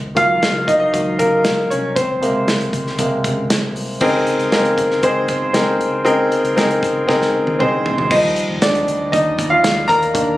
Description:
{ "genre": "piano-driven pop", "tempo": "117 BPM", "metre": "4/4", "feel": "straight", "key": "unclear", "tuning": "A4 = 437 Hz", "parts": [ { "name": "vintage muted fingered electric bass", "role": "bass", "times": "0.0-10.4 s", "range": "C2 to Db3", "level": "-28 LUFS", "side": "equal", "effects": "none" }, { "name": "clear grand piano", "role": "accompaniment", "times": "0.1-10.4 s", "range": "C3 to Bb5", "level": "-15 LUFS", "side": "equal", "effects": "none" }, { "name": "modern studio drum kit", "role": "drums", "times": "0.2-10.3 s", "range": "crash cymbal, hi-hat, kick drum, snare drum, toms", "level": "-21 LUFS", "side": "equal", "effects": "none" } ], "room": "light reverb, studio ambience", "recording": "recorded on a phone in the room, club reverb, compression", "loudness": "-14 LUFS", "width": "side -16 dB against mid", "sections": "0.0-4.0 A section; 4.0-8.1 B section; 8.1-10.4 C section", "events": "grand piano solo 0.0-4.0, 8.1-10.4; drum fill 7.1-8.1", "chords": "0.0 Ebm/Db; 2.0 Abadd9/Db; 8.1 Ebadd9" }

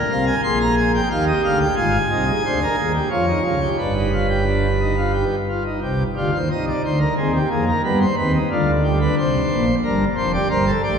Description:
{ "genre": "classical, baroque-style 3-part fugue for pipe organ", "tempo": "89 BPM", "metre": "3/4", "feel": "straight", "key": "unclear", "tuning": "A4 = 441 Hz", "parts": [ { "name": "pipe organ, principal chorus", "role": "solo", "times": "0.0-11.0 s", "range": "F1 to C6", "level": "-17 LUFS", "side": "equal", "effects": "none" } ], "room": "wet cathedral reverb, RT60 5.5 s", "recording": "heard from further back in the room", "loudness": "-17 LUFS", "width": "side -6 dB against mid", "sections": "0.0-5.8 A section; 5.8-11.0 B section", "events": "none", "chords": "0.0 Bb7(no3); 1.1 Eb; 1.8 Ab; 3.1 Db/F; 3.8 G; 5.8 Cm; 7.2 Ab/Eb; 7.8 G; 9.2 Bbadd9; 9.8 Gm" }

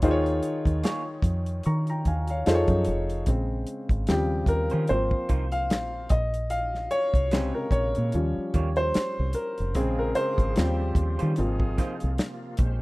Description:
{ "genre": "R&B, neo-soul", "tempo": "74 BPM", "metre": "4/4", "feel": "swing 57% on 16ths", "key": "unclear", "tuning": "A4 = 441 Hz", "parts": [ { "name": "warm upright piano", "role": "accompaniment", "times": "0.0-12.6 s", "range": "C3 to Db6", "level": "-27 LUFS", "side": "left 1 dB", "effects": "none" }, { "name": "deep dub fingered electric bass", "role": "bass", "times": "0.0-12.8 s", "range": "F1 to Eb3", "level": "-26 LUFS", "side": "equal", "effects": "none" }, { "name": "warm soul drum kit", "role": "drums", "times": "0.0-12.8 s", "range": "hi-hat, kick drum, snare drum", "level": "-26 LUFS", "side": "equal", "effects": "none" }, { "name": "electric guitar through a small old amp", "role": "second line", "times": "0.8-11.9 s", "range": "G3 to Db5", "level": "-35 LUFS", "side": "right 4 dB", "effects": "none" }, { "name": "bright tonewheel organ", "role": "sustained chords", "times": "9.8-12.8 s", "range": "Bb2 to C5", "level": "-37 LUFS", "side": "equal", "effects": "overdrive, chorus vibrato, fast rotary speaker" }, { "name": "clear horn section", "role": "stabs", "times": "9.8-12.8 s", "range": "Db3 to Ab4", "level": "-40 LUFS", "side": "right 1 dB", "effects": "none" } ], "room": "small room ambience", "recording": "rough home demo mix", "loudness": "-23 LUFS", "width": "side -21 dB against mid", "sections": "0.0-3.3 A section; 3.3-12.8 B section", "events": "upright piano solo 3.3-12.8", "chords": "0.0 Eb9sus4; 2.5 F7alt; 3.3 Bbm9; 4.1 Eb13; 4.9 Ab69; 6.1 Bbm9; 8.1 Eb9; 9.8 Bbm9; 10.6 Eb13; 11.4 Ab69" }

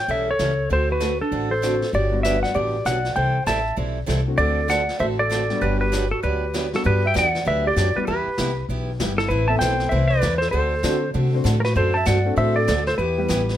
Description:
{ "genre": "country, western swing", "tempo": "195 BPM", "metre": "4/4", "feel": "swing 62% on 8ths", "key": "G major", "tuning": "A4 = 440 Hz", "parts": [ { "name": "clean lap steel guitar", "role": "melody", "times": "0.0-13.6 s", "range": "A4 to A5", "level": "-23 LUFS", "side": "left 1 dB", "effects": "none" }, { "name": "growling clarinet", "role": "second line", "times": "0.0-13.6 s", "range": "D4 to E5", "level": "-28 LUFS", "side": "right 2 dB", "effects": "none" }, { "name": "picked steel-string acoustic guitar", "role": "accompaniment", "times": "0.1-13.4 s", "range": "C3 to B4", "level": "-28 LUFS", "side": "right 4 dB", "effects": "none" }, { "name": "upright bass", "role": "bass", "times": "0.1-13.6 s", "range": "G1 to D3", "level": "-23 LUFS", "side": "equal", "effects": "none" }, { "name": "vintage brush drum kit", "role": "drums", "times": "0.1-13.6 s", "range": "brushed snare drum, hi-hat, snare drum", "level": "-31 LUFS", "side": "left 2 dB", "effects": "none" }, { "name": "warm upright piano", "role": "accompaniment", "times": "1.6-13.6 s", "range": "G3 to C5", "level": "-28 LUFS", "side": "left 3 dB", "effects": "none" } ], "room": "light reverb", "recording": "none", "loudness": "-19 LUFS", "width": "side -12 dB against mid", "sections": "0.0-6.9 A section; 6.9-13.6 B section", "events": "none", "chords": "0.0 A7; 0.7 D7; 1.9 Gmaj7; 3.2 C6; 4.4 D7; 5.6 Gmaj7; 8.1 Em; 9.3 Amadd9; 10.5 D7; 13.0 Em" }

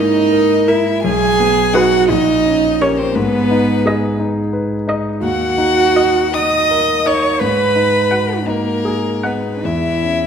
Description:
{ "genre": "classical, slow romantic movement for piano quartet", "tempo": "50-59 BPM (dotted quarters)", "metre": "6/8", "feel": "rubato", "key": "G# minor", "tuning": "A4 = 442 Hz", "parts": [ { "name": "warm violin", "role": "melody", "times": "0.0-10.3 s", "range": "A#4 to D#6", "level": "-20 LUFS", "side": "left 7 dB", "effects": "none" }, { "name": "dark cello", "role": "second line", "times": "0.0-10.3 s", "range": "A#3 to D#5", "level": "-16 LUFS", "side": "right 5 dB", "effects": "none" }, { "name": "warm concert grand piano", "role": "accompaniment", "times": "0.0-10.3 s", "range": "Bb1 to B4", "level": "-18 LUFS", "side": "left 2 dB", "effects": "none" }, { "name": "dark viola", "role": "accompaniment", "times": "0.7-9.5 s", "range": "A#4 to F#5", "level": "-22 LUFS", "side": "left 1 dB", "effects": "none" } ], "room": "wet recital hall reverb, RT60 1.5 s", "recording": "none", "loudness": "-13 LUFS", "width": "side -7 dB against mid", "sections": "0.0-10.3 A section", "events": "none", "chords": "0.0 A#(b5, no3)/G#; 1.0 G#m/B; 2.1 Gdim/Bb; 3.2 G#m; 5.2 D#m; 7.4 G#m7; 9.6 C#m/E" }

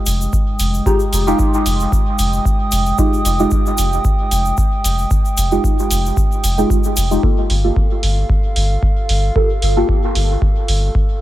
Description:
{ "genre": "dub techno", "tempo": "113 BPM", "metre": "4/4", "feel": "swing 54% on 16ths", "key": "G phrygian", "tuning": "A4 = 440 Hz", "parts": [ { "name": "dark analog pad", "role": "sustained chords", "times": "0.0-11.2 s", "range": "Ab3 to Eb6", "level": "-23 LUFS", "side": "right 2 dB", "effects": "chorus, sidechain pumping" }, { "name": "deep mellow chord stab", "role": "stabs", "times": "0.0-11.2 s", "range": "Ab3 to A4", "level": "-20 LUFS", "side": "equal", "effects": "chorus, phaser, sidechain pumping, dub echo" }, { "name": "soft dub sub bass", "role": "bass", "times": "0.1-10.9 s", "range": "F1 to G1", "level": "-17 LUFS", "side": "equal", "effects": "sidechain pumping" }, { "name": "electronic hi-hat", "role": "drums", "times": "0.1-10.8 s", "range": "none", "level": "-25 LUFS", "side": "right 2 dB", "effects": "none" }, { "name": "egg shaker", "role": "percussion", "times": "0.1-7.2 s", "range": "none", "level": "-26 LUFS", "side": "left 4 dB", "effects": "none" }, { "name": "electronic kick drum", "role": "drums", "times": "0.3-11.1 s", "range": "none", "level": "-17 LUFS", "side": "equal", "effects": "overdrive" } ], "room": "little or no reverb", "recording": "none", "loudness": "-14 LUFS", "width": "side -14 dB against mid", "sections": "0.0-7.2 A section; 7.2-11.2 A section", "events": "none", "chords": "0.0 Fm9; 7.2 Gm9" }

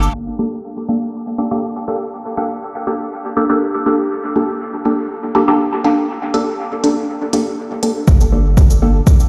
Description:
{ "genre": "dub techno", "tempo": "121 BPM", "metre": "4/4", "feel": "straight", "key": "G minor", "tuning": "A4 = 439 Hz", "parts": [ { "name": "filtered dub chord stab", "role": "stabs", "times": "0.0-9.0 s", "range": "Bb3 to A4", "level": "-19 LUFS", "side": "equal", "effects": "phaser, cassette tape, sidechain pumping, dub echo" }, { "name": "pure sine sub bass", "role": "bass", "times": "0.0-0.1, 8.1-9.0 s", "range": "G1", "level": "-17 LUFS", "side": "equal", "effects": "sidechain pumping" }, { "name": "electronic shaker and hi-hat", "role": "drums", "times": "0.0-9.3 s", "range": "none", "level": "-32 LUFS", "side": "equal", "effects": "none" }, { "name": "electronic kick drum", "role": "drums", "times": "8.1-9.2 s", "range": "none", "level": "-12 LUFS", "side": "equal", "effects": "none" } ], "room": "moderate huge ambient reverb, RT60 6.8 s", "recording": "played on a big sound system in a bare room, stone room reverb, vinyl crackle, low-pass filter", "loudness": "-17 LUFS", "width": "mono", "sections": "0.1-8.1 A section; 8.1-9.3 B section", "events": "filter sweep 0.1-8.1", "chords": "0.1 Gmadd9" }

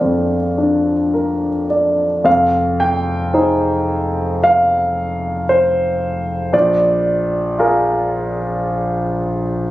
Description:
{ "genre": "neoclassical piano and strings", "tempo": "53-58 BPM", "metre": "4/4", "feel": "rubato", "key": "F dorian", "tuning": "A4 = 441 Hz", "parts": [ { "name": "clear concert grand piano", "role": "accompaniment", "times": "0.0-9.7 s", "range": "Bb1 to G5", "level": "-15 LUFS", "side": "equal", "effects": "none" }, { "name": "sub bass with octave", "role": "bass", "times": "2.3-9.7 s", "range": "F1 to Bb1", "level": "-25 LUFS", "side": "equal", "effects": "none" } ], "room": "light reverb", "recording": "recorded on a phone in the room, studio reverb", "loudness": "-14 LUFS", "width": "side -15 dB against mid", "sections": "0.0-2.3 A section; 2.3-9.7 B section", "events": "none", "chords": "0.0 Bb; 2.3 Fm7; 6.5 Bb7" }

